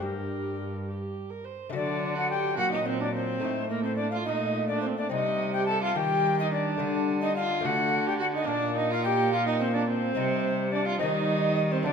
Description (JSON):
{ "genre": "classical, renaissance-style consort dance", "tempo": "71 BPM (dotted quarters)", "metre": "6/8", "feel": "straight", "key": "unclear", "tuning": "A4 = 440 Hz", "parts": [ { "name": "mellow alto recorder", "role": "melody", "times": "0.0-11.9 s", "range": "Bb4 to A5", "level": "-29 LUFS", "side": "left 4 dB", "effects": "none" }, { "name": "warm viola", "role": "second line", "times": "0.0-11.9 s", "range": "Bb3 to C5", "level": "-31 LUFS", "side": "right 7 dB", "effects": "none" }, { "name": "dark trombone", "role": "accompaniment", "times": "0.0-11.9 s", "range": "F#3 to Bb3", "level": "-33 LUFS", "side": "left 1 dB", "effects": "none" }, { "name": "lute", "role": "accompaniment", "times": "0.0-11.9 s", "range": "G2 to G4", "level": "-35 LUFS", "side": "left 7 dB", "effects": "none" }, { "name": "rich cello", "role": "bass", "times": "0.0-11.9 s", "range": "G2 to Eb3", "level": "-33 LUFS", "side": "right 2 dB", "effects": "none" } ], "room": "wet recital hall reverb, RT60 1.6 s", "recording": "none", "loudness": "-25 LUFS", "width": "side -6 dB against mid", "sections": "0.0-1.7 A section; 1.7-11.9 A section", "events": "none", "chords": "0.0 Gm; 1.7 D; 3.4 Cm13/A; 5.1 Cm; 6.8 Dsus4; 7.6 D; 8.5 Bb; 10.2 Cm" }